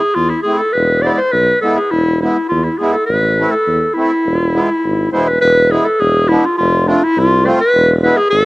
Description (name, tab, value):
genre	klezmer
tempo	103 BPM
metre	2/4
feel	straight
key	E phrygian dominant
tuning	A4 = 435 Hz
part	clear clarinet	melody	0.0-8.4 s	D4 to D5	-13 LUFS	equal	none
part	warm tuba	bass	0.2-8.4 s	E1 to E2	-16 LUFS	equal	none
part	accordion	accompaniment	0.4-8.2 s	G#3 to F4	-20 LUFS	right 1 dB	light tremolo tuning, cassette tape
room	light reverb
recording	home recording on cassette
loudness	-11 LUFS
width	side -22 dB against mid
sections	0.0-5.4 A section; 5.4-8.4 B section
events	none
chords	0.0 Am; 0.7 E; 3.1 Am; 4.3 E; 6.6 F; 7.7 E